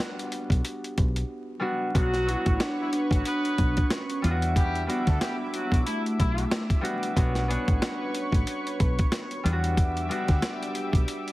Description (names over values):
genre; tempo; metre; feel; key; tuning
hip hop, boom-bap hip-hop; 92 BPM; 4/4; swing 58% on 16ths; unclear; A4 = 441 Hz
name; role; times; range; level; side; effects
concert harp; accompaniment; 0.0-11.3 s; G3 to C#5; -31 LUFS; equal; high-pass filter, low-pass filter
boom bap sampler-style drum kit; drums; 0.0-11.3 s; hi-hat, kick drum, snare drum; -26 LUFS; equal; none
deep dub fingered electric bass; bass; 0.5-11.0 s; A1 to E2; -27 LUFS; equal; none
lush unison pad; sustained chords; 1.9-11.3 s; G3 to D6; -36 LUFS; equal; chorus, high-pass filter, low-pass filter
vibraphone with soft mallets; melody; 2.0-6.7 s; A3 to F#4; -30 LUFS; equal; high-pass filter, low-pass filter, digital delay
mellow trumpet section; stabs; 2.0-6.4 s; F#3 to B4; -34 LUFS; equal; high-pass filter, low-pass filter, digital delay
room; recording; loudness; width
light reverb, small room ambience; heavily compressed radio sound, vinyl crackle; -24 LUFS; side -18 dB against mid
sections
0.0-11.3 A section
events
break 1.3-1.9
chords
0.0 Em7 (rootless); 1.9 Bmadd9; 4.2 Em7; 7.2 Bmadd9; 9.4 Em7